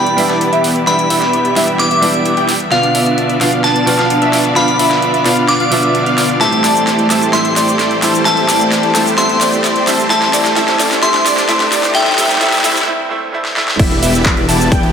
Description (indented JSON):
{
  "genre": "EDM, festival progressive house",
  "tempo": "130 BPM",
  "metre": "4/4",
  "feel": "straight",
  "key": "A minor",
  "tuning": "A4 = 440 Hz",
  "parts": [
    { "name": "glassy synth bell", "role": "melody", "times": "0.0-12.9 s", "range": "F5 to D6", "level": "-16 LUFS", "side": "left 1 dB", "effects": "chorus, digital delay" },
    { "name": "bright baby grand piano", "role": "accompaniment", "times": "0.0-13.8 s", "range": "A2 to F4", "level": "-20 LUFS", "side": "right 2 dB", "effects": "sidechain pumping, digital delay" },
    { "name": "rich chamber string section", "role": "sustained chords", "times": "0.0-14.9 s", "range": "D3 to E5", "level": "-22 LUFS", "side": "left 1 dB", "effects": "sidechain pumping" },
    { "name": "plucky unison lead", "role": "arpeggios", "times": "0.0-14.9 s", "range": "D5 to A5", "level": "-21 LUFS", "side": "equal", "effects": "wide subtle chorus, sidechain pumping, digital delay" },
    { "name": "dense compressed supersaw", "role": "riff", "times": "0.0-14.9 s", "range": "A3 to A5", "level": "-16 LUFS", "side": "equal", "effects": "sidechain pumping, low-pass filter" },
    { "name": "riser", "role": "sound effects", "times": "4.8-12.9 s", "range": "none", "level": "-26 LUFS", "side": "equal", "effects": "none" },
    { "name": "big-room dance drum kit", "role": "drums", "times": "0.1-14.9 s", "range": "cabasa, crash cymbal, handclaps, hi-hat, snare drum", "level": "-18 LUFS", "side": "equal", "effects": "overdrive, high-pass filter on hats, high-pass filter on snare, high-pass filter on perc, high-pass filter on cymbals" },
    { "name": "detuned saw bass", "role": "bass", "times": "13.8-14.9 s", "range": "E1", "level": "-16 LUFS", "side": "left 1 dB", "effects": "tube saturation, sidechain pumping" },
    { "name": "electronic kick drum", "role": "drums", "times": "13.8-14.8 s", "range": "none", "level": "-14 LUFS", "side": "equal", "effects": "overdrive" }
  ],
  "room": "wet lush hall reverb, RT60 1.9 s",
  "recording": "high-pass filter",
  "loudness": "-10 LUFS",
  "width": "side -7 dB against mid",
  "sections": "0.0-13.8 A section; 13.8-14.9 B section",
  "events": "build-up 0.0-13.8; drum fill 0.0-12.9, 13.4-13.8; filter sweep on supersaw synth 0.0-13.8; filter sweep on digital synth lead 0.0-13.8; riser 4.8-12.9; break 12.9-13.8; drop 13.8-14.9",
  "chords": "0.0 Em7; 2.7 Bdim; 6.4 Am7; 13.8 Em7",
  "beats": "0.41 | 0.87 1.33 1.79 2.26 | 2.72 3.18 3.64 4.10 | 4.56 5.03 5.49 5.95 | 6.41 6.87 7.33 7.79 | 8.26 8.72 9.18 9.64 | 10.10 10.56 11.03 11.49 | 11.95 12.41 12.87 13.33 | 13.79 14.26 14.72"
}